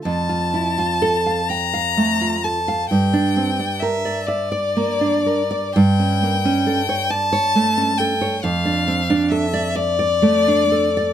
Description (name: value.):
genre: romantic duo for violin and classical guitar.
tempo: 39-46 BPM (dotted quarters).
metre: 6/8.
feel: rubato.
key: unclear.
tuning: A4 = 440 Hz.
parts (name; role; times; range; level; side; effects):
clear violin; melody; 0.1-11.1 s; D5 to Bb5; -20 LUFS; left 4 dB; none.
nylon-string guitar; accompaniment; 0.1-11.1 s; F2 to G5; -19 LUFS; right 3 dB; none.
room: light reverb.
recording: close, detailed microphones.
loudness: -16 LUFS.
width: side -10 dB against mid.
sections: 0.1-11.1 A section.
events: none.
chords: 0.1 F; 2.9 Gm; 5.8 A7/G; 8.4 Dm/F.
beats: | 0.06 1.50 | 2.90 4.28 | 5.76 7.12 | 8.45 9.77.